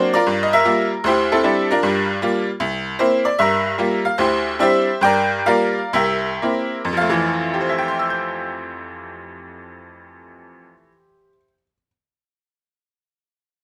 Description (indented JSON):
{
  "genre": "solo jazz",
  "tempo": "107-154 BPM",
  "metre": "4/4",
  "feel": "swing 65% on 8ths",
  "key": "F major",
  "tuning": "A4 = 440 Hz",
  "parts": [
    { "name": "tack piano", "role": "solo", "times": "0.0-11.9 s", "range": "C2 to G6", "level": "-19 LUFS", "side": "equal", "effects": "none" }
  ],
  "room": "light reverb",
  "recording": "none",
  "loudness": "-19 LUFS",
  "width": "mono",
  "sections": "0.3-7.0 A section; 7.0-11.4 B section",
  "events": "slowing down 3.4-7.0",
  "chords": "0.3 Gm7; 1.0 D9sus4; 1.8 Gm7; 2.6 C7; 3.4 Gm7; 4.2 D9sus4; 5.0 Gm7; 5.9 C7; 7.0 Fmaj7"
}